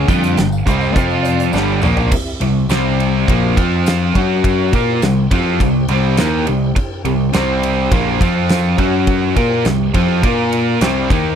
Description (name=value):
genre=classic rock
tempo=104 BPM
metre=4/4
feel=straight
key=C mixolydian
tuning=A4 = 443 Hz
part: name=tonewheel organ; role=sustained chords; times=0.0-11.4 s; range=C3 to G5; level=-26 LUFS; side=right 1 dB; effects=slow rotary speaker, overdrive, chorus vibrato
part: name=biting overdriven guitar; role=riff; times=0.0-11.4 s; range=G2 to Bb4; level=-22 LUFS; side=right 1 dB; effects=spring reverb
part: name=overdriven semi-hollow guitar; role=riff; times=0.0-11.4 s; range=G2 to Bb4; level=-20 LUFS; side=left 13 dB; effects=none
part: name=tight distorted guitar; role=riff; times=0.0-11.4 s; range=G2 to Bb4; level=-20 LUFS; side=right 14 dB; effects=distortion
part: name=growling picked electric bass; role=bass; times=0.0-11.4 s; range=G1 to Bb2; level=-19 LUFS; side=equal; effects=overdrive
part: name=huge arena drum kit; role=drums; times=0.1-11.2 s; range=crash cymbal, hi-hat, kick drum, ride cymbal, snare drum, toms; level=-19 LUFS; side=equal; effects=none
part: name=tambourine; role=percussion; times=0.1-10.9 s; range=none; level=-37 LUFS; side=left 18 dB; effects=none
room=little or no reverb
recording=dry, close 1970s-style studio recording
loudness=-13 LUFS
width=side -8 dB against mid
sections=0.0-2.1 A section; 2.1-11.4 B section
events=tonewheel organ solo 0.0-2.1; drum fill 1.5-2.1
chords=0.1 G5; 1.0 F5; 1.5 G5; 2.1 C; 3.6 F5; 4.2 F#5; 4.7 C; 8.2 F5; 8.8 F#5; 9.4 C; 10.2 Bb5; 10.8 C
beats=0.38 0.96 1.54 | 2.12 2.71 3.29 3.87 | 4.45 5.03 5.61 6.18 | 6.76 7.34 7.92 8.50 | 9.08 9.66 10.23 10.81